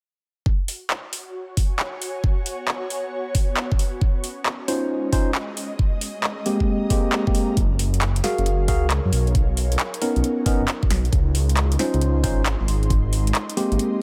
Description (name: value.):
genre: UK garage, two-step garage.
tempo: 135 BPM.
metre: 4/4.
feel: swing 66% on 16ths.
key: F# major.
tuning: A4 = 439 Hz.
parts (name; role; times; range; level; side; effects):
electronic kick drum; drums; 0.5-13.0 s; none; -23 LUFS; equal; none.
ethereal airy pad; texture; 1.2-14.0 s; F#3 to A#5; -36 LUFS; equal; ensemble chorus, built-in reverb, sidechain pumping.
garage drum kit; drums; 0.7-13.9 s; handclaps, hi-hat, snare drum; -29 LUFS; equal; none.
tine electric piano; stabs; 4.7-14.0 s; G#3 to E#5; -26 LUFS; equal; vintage 12-bit sampler grit, dub echo.
ethereal airy pad; sustained chords; 8.2-14.0 s; D#4 to B#5; -37 LUFS; equal; ensemble chorus, built-in reverb, sidechain pumping.
dark detuned saw bass; bass; 7.6-13.8 s; F#1 to F#2; -23 LUFS; equal; none.
room: digital ambience.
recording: none.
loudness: -22 LUFS.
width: mono.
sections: 0.5-7.6 A section; 7.6-14.0 B section.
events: none.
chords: 0.5 F#sus2; 2.2 Bsus2; 4.0 C#maj9; 5.8 G#maj9; 7.6 F#maj9; 9.3 Bmaj9; 11.1 C#maj9; 12.9 G#maj9.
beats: | 0.46 0.90 1.35 1.79 | 2.24 2.68 3.13 3.57 | 4.02 4.46 4.90 5.35 | 5.79 6.24 6.68 7.13 | 7.57 8.02 8.46 8.90 | 9.35 9.79 10.24 10.68 | 11.13 11.57 12.02 12.46 | 12.90 13.35 13.79.